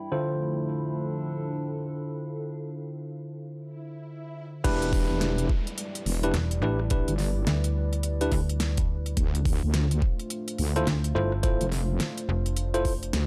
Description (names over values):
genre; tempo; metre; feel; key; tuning
glitch hop; 106 BPM; 4/4; swing 62% on 16ths; E phrygian; A4 = 440 Hz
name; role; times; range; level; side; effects
dark analog pad; sustained chords; 0.0-13.3 s; F3 to D5; -40 LUFS; equal; chorus, sidechain pumping
tine electric piano; stabs; 0.0-12.9 s; D3 to C5; -33 LUFS; equal; sidechain pumping, low-pass filter, analog delay
downlifter and swell; sound effects; 3.7-9.2 s; none; -45 LUFS; equal; none
warbly tape-like pad; texture; 0.0-2.4 s; D4 to B5; -42 LUFS; equal; chorus, built-in reverb, sidechain pumping
wobble bass; bass; 4.6-13.3 s; E1 to D2; -29 LUFS; equal; chorus
electronic kick drum; drums; 4.6-13.0 s; none; -29 LUFS; equal; none
pop drum kit; drums; 4.6-13.3 s; crash cymbal, hi-hat, rim click, snare drum; -35 LUFS; equal; low-pass filter on hats, low-pass filter on cymbals, low-pass filter on snare
slap-like FM bass; bass; 6.3-13.1 s; E1 to D2; -30 LUFS; equal; none
room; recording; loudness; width
little or no reverb; dry, gritty hardware recording; -28 LUFS; mono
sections
0.0-4.6 A section; 4.6-13.3 B section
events
break 2.4-4.6; swell 3.7-4.6; drop 4.6-13.3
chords
0.1 Dm7; 4.6 Em7; 9.2 Dm7